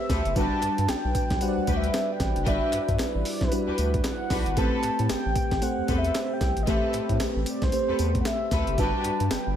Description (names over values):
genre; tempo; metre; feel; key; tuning
R&B, new jack swing; 114 BPM; 4/4; swing 60% on 16ths; A dorian; A4 = 441 Hz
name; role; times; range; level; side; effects
mellow horn-like synth lead; melody; 0.0-9.6 s; B4 to A5; -30 LUFS; equal; chorus, analog delay
FM electric piano with soft pad layer; accompaniment; 0.0-9.6 s; G3 to D5; -30 LUFS; equal; chorus, tremolo
chorused pulse-width pad; sustained chords; 0.0-9.6 s; G3 to B4; -34 LUFS; left 1 dB; none
warm studio string section; stabs; 0.1-9.0 s; C4 to B4; -34 LUFS; left 2 dB; analog delay
round analog bass; bass; 0.1-9.6 s; F#1 to A2; -28 LUFS; equal; none
breakbeat sampler-style drum kit; drums; 0.1-9.5 s; hi-hat, kick drum, snare drum, tambourine; -29 LUFS; equal; none
group handclap; percussion; 0.6-9.5 s; none; -46 LUFS; right 2 dB; none
room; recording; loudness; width
moderate plate reverb, RT60 2.1 s; dreamy mix soaked in reverb; -23 LUFS; side -9 dB against mid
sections
0.0-9.6 A section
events
none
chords
0.0 Am9; 8.8 Gmaj7